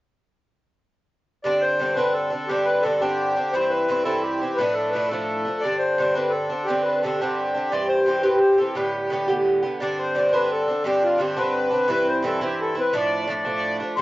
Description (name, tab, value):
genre	celtic folk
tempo	115 BPM (dotted quarters)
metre	6/8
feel	straight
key	G mixolydian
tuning	A4 = 440 Hz
part	accordion	melody	1.4-13.8 s	F4 to D5	-24 LUFS	left 1 dB	cassette tape
part	Irish bouzouki	accompaniment	1.4-14.0 s	G2 to G4	-22 LUFS	right 1 dB	cassette tape
part	wooden flute	second line	14.0 s	C6	-20 LUFS	left 5 dB	cassette tape
room	moderate spring reverb, RT60 1.2 s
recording	home recording on cassette, nothing above 7.6 kHz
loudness	-20 LUFS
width	side -17 dB against mid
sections	1.4-9.8 A section; 9.8-14.0 A section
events	none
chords	1.4 Gsus4; 3.5 C; 4.6 Dm; 5.6 Gsus4; 7.7 C; 8.8 Gadd9; 9.8 Gsus4; 11.9 C; 12.9 Dm